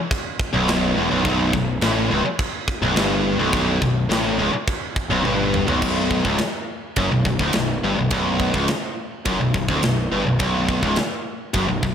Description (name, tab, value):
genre	heavy metal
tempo	105 BPM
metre	4/4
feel	straight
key	B minor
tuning	A4 = 442 Hz
part	tight metal drum kit	drums	0.1-11.9 s	china cymbal, crash cymbal, kick drum, ride cymbal, snare drum, toms	-25 LUFS	equal	none
part	heavy high-gain guitar	riff	0.5-11.9 s	B1 to A2	-22 LUFS	left 4 dB	distortion
part	tight distorted guitar	riff	0.5-11.9 s	B1 to A2	-25 LUFS	right 10 dB	distortion
part	fuzz picked electric bass	bass	0.5-11.9 s	B0 to A1	-27 LUFS	equal	overdrive
room	moderate lush hall reverb, RT60 1.9 s, small room ambience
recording	big arena sound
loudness	-18 LUFS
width	side -8 dB against mid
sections	0.0-5.8 A section; 5.8-11.9 B section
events	drum fill 5.2-5.8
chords	0.0 A9/B; 5.8 Bm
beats	0.10 0.68 | 1.25 1.82 2.39 2.96 | 3.53 4.10 4.67 5.25 | 5.82 6.39 6.96 7.54 | 8.11 8.68 9.26 9.83 | 10.40 10.97 11.54